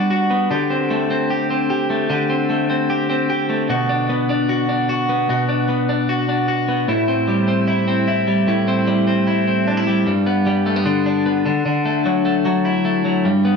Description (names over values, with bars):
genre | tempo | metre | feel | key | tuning
indie pop | 151 BPM | 4/4 | straight | unclear | A4 = 441 Hz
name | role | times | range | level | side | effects
twelve-string electric guitar | solo | 0.0-13.6 s | G2 to G4 | -16 LUFS | left 1 dB | spring reverb
room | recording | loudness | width
moderate echo chamber reverb, RT60 1.9 s, digital ambience | dark, warm production | -16 LUFS | side -5 dB against mid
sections
0.0-10.1 A section; 10.1-13.6 B section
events
none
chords
0.0 Gmaj7; 0.5 D7sus4; 3.7 Bm; 6.9 Am7; 10.1 G; 11.5 Dadd9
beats
0.11 | 0.51 0.91 1.30 1.70 | 2.10 2.50 2.90 3.30 | 3.69 4.09 4.49 4.89 | 5.29 5.69 6.08 6.48 | 6.88 7.28 7.68 8.08 | 8.47 8.87 9.27 9.67 | 10.07 10.47 10.86 11.26 | 11.66 12.06 12.46 12.85 | 13.25